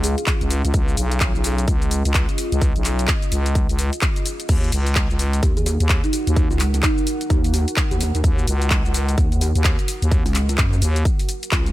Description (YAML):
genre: bass house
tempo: 128 BPM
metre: 4/4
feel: swing 60% on 16ths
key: Eb minor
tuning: A4 = 440 Hz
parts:
  - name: kalimba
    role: melody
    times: 0.0-0.2, 5.6-7.0 s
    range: Eb4 to Ab4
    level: -28 LUFS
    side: right 3 dB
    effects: digital delay
  - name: growling FM bass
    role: bass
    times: 0.0-11.0 s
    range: Cb2 to Eb2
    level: -20 LUFS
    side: equal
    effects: tube saturation, sidechain pumping
  - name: garage drum kit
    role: drums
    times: 0.0-11.7 s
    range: crash cymbal, handclaps, hi-hat, shaker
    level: -25 LUFS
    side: left 1 dB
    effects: none
  - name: deep dark ambient pad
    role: texture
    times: 0.0-11.7 s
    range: Db4 to Gb5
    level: -31 LUFS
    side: equal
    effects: chorus, built-in reverb, sidechain pumping
  - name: electronic kick drum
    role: drums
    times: 0.3-11.6 s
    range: none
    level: -20 LUFS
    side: equal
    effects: none
  - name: pulsing pluck wobble bass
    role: bass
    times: 5.4-11.7 s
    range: Db2 to Gb2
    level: -20 LUFS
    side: equal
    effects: chorus, tube saturation, sidechain pumping
room: digital ambience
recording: none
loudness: -17 LUFS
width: side -16 dB against mid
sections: 0.0-11.7 A section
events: none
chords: 0.0 Db; 4.5 Ebm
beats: 0.27 | 0.74 1.21 1.68 2.15 | 2.62 3.08 3.55 4.02 | 4.49 4.96 5.43 5.90 | 6.37 6.83 7.30 7.77 | 8.24 8.71 9.18 9.65 | 10.12 10.58 11.05 11.52